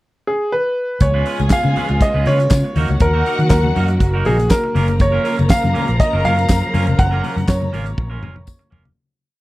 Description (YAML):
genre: disco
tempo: 120 BPM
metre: 4/4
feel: straight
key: unclear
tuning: A4 = 440 Hz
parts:
  - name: clear baby grand piano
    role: melody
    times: 0.3-8.7 s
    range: G#4 to F#5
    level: -20 LUFS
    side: equal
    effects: none
  - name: dark studio string section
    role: second line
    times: 1.0-8.4 s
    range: F#4 to A#5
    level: -27 LUFS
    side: left 3 dB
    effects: none
  - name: clean electric guitar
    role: accompaniment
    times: 1.0-8.9 s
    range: G#3 to B4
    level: -27 LUFS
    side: right 4 dB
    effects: none
  - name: clear studio string section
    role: sustained chords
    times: 1.0-8.9 s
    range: C#3 to F#4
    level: -25 LUFS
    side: right 2 dB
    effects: none
  - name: fingered electric bass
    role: bass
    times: 1.0-8.9 s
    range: E#1 to D#3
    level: -18 LUFS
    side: equal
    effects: none
  - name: damped 70s drum kit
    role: drums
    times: 1.0-9.0 s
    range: handclaps, hi-hat, kick drum, snare drum, toms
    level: -15 LUFS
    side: equal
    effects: none
  - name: congas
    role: percussion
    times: 1.0-9.0 s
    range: none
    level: -26 LUFS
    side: left 4 dB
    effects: none
  - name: tambourine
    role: percussion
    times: 1.5-8.6 s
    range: none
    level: -35 LUFS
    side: left 10 dB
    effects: none
room: little or no reverb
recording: dry, close 1970s-style studio recording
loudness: -14 LUFS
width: side -18 dB against mid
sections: 0.0-1.0 pickup bar; 1.0-9.0 pre-chorus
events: fade-out 7.0-9.0; drum fill 8.0-9.0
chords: 0.0 N.C.; 1.0 C#7; 2.8 D#m; 4.8 F#maj7